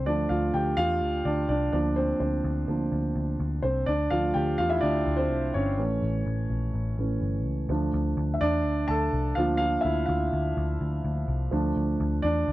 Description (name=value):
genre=piano-driven pop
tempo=126 BPM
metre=4/4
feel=straight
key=D minor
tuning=A4 = 441 Hz
part: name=warm concert grand piano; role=accompaniment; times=0.0-12.5 s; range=E3 to A5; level=-26 LUFS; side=right 1 dB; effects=none
part: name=vintage muted picked electric bass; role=bass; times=0.0-12.5 s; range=G1 to E2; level=-28 LUFS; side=left 1 dB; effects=none
room=little or no reverb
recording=dry, close 1970s-style studio recording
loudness=-24 LUFS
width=side -16 dB against mid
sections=0.0-7.7 A section; 7.7-12.5 B section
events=grand piano solo 0.0-7.7, 7.7-12.5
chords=0.1 Dm; 1.7 Bb/D; 3.9 Dm; 5.8 A; 7.7 Dm; 9.4 Bb/D; 11.5 Dm